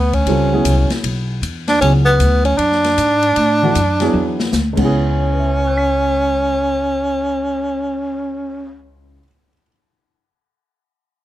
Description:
modal jazz; 155 BPM; 4/4; swing 64% on 8ths; C# phrygian; A4 = 441 Hz
breathy tenor saxophone; melody; 0.0-8.8 s; B3 to D4; -16 LUFS; right 1 dB; plate reverb
upright bass; bass; 0.0-9.1 s; B1 to A2; -18 LUFS; equal
open jazz drum kit; drums; 0.1-4.8 s; crash cymbal, hi-hat, kick drum, ride cymbal, snare drum, toms; -24 LUFS; left 3 dB
dark baby grand piano; accompaniment; 0.3-9.7 s; C#2 to B6; -21 LUFS; right 1 dB
light reverb; close, detailed microphones; -14 LUFS; side -14 dB against mid
0.0-4.9 A section; 4.9-8.0 B section
drum fill 4.1-4.9
0.0 C#m7; 1.8 Dadd9/C#; 4.7 C#m7
| 0.27 0.66 1.05 1.43 | 1.82 2.21 2.60 2.98 | 3.37 3.76 4.14 4.53 | 4.92 5.31 5.70 6.08 | 6.47 6.86 7.25 7.63

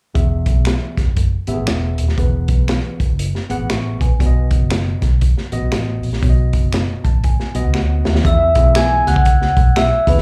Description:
uptempo 1960s-style soul; 119 BPM; 4/4; swing 61% on 8ths; E major; A4 = 440 Hz
tine electric piano; accompaniment; 0.1-10.2 s; B2 to C#6; -27 LUFS; equal; slapback echo
vintage muted fingered electric bass; bass; 0.2-10.2 s; D#1 to E2; -20 LUFS; equal
crunchy breakbeat drum kit; drums; 0.2-10.2 s; hi-hat, kick drum, snare drum; -20 LUFS; equal
finger snap; percussion; 0.7-9.9 s; -30 LUFS; equal; slapback echo
vibraphone with soft mallets; melody; 8.3-10.2 s; B4 to G#5; -18 LUFS; equal; slapback echo
glockenspiel with brass mallets; second line; 8.3-10.2 s; B5 to G#6; -29 LUFS; equal; slapback echo
little or no reverb; live gig heard through the venue's PA, club reverb; -16 LUFS; mono
0.2-8.2 A section; 8.2-10.2 B section
tine electric piano fill 6.7-8.2; drum fill 7.7-8.2
0.2 E; 4.2 B; 8.2 E
| 0.15 0.66 1.16 1.67 | 2.18 2.68 3.19 3.69 | 4.20 4.71 5.21 5.72 | 6.23 6.73 7.24 7.74 | 8.25 8.75 9.26 9.76

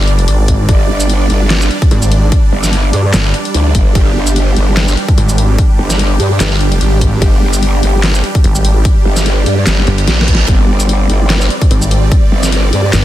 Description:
heavy wobble dubstep; 147 BPM; 4/4; swing 55% on 16ths, half-time; A4 = 440 Hz
supersaw chords; sustained chords; 0.0-13.0 s; G3 to D5; -18 LUFS; right 2 dB; phaser, sidechain pumping
snarling distorted saw bass; bass; 0.0-13.0 s; G1 to Ab1; -11 LUFS; equal; overdrive
dubstep drum kit; drums; 0.1-13.0 s; handclaps, hi-hat, shaker, snare drum; -16 LUFS; left 1 dB
electronic kick drum; drums; 0.5-12.2 s; -11 LUFS; equal
growl bass; bass; 0.7-12.9 s; G1 to G2; -12 LUFS; equal; distortion, chorus, overdrive
reverse cymbal; sound effects; 9.9-10.5 s; -22 LUFS; right 6 dB
little or no reverb; dense, heavily limited modern master; -9 LUFS; side -13 dB against mid
0.0-13.0 A section
reverse cymbal 9.9-10.5; drum fill 10.1-10.5
0.0 G5
0.28 | 0.69 1.09 1.50 1.91 | 2.32 2.73 3.14 3.54 | 3.95 4.36 4.77 5.18 | 5.58 5.99 6.40 6.81 | 7.22 7.63 8.03 8.44 | 8.85 9.26 9.67 10.07 | 10.48 10.89 11.30 11.71 | 12.12 12.52 12.93

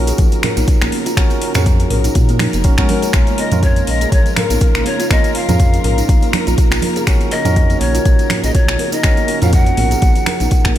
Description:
afro house; 122 BPM; 4/4; swing 56% on 16ths; A4 = 441 Hz
muted studio string section; sustained chords; 0.0-10.8 s; Db3 to Bb4; -27 LUFS; left 2 dB; sidechain pumping
barky tine electric piano; stabs; 0.0-10.8 s; Db4 to Bb4; -25 LUFS; right 2 dB; overdrive, auto-pan, sidechain pumping, tape echo
round analog bass; bass; 0.0-10.7 s; F1 to Bb2; -18 LUFS; equal; sidechain pumping
kalimba; arpeggios; 0.1-10.8 s; F3 to Bb4; -21 LUFS; right 1 dB; sidechain pumping, tape echo
afro-pop drum kit; drums; 0.1-10.8 s; finger snaps, hi-hat, toms; -21 LUFS; equal; studio reverb
tambourine; percussion; 0.1-10.7 s; -31 LUFS; right 4 dB
electronic kick drum; drums; 0.2-10.7 s; -13 LUFS; equal; studio reverb
congas; percussion; 0.3-10.8 s; -25 LUFS; right 4 dB
breathy large pan pipes; melody; 3.4-10.7 s; Bb4 to Gb5; -21 LUFS; left 1 dB; tape echo
small room ambience; -12 LUFS; side -12 dB against mid
0.0-10.8 A section
0.0 Gb/Bb; 3.1 Bbm; 7.1 Gb/Bb
0.19 0.68 | 1.17 1.66 2.15 2.65 | 3.14 3.63 4.12 4.61 | 5.11 5.60 6.09 6.58 | 7.07 7.56 8.06 8.55 | 9.04 9.53 10.02 10.52

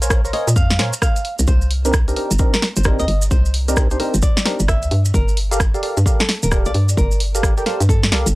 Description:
UK garage, two-step garage; 131 BPM; 4/4; swing 63% on 16ths; A4 = 440 Hz
percussive organ stab; stabs; 0.0-8.3 s; C4 to Bb5; -23 LUFS; equal; analog chorus, tape echo
hollow knocking FM bass; bass; 0.0-8.3 s; D1 to Bb2; -18 LUFS; equal
garage drum kit; drums; 0.0-8.3 s; hi-hat, rim click, snare drum; -21 LUFS; equal; small room ambience
maracas; percussion; 0.0-8.3 s; -26 LUFS; right 2 dB
electronic kick drum; drums; 0.1-8.0 s; -18 LUFS; equal; small room ambience
flamenco guitar; melody; 0.3-8.2 s; A4 to F5; -27 LUFS; equal; tape echo
little or no reverb; dry, gritty hardware recording, transformer saturation; -15 LUFS; side -20 dB against mid
0.0-8.3 A section
0.0 Bbm9; 1.2 Cm9; 4.9 Gm9
0.10 0.56 1.02 | 1.48 1.94 2.39 2.85 | 3.31 3.77 4.23 4.68 | 5.14 5.60 6.06 6.52 | 6.97 7.43 7.89 8.35

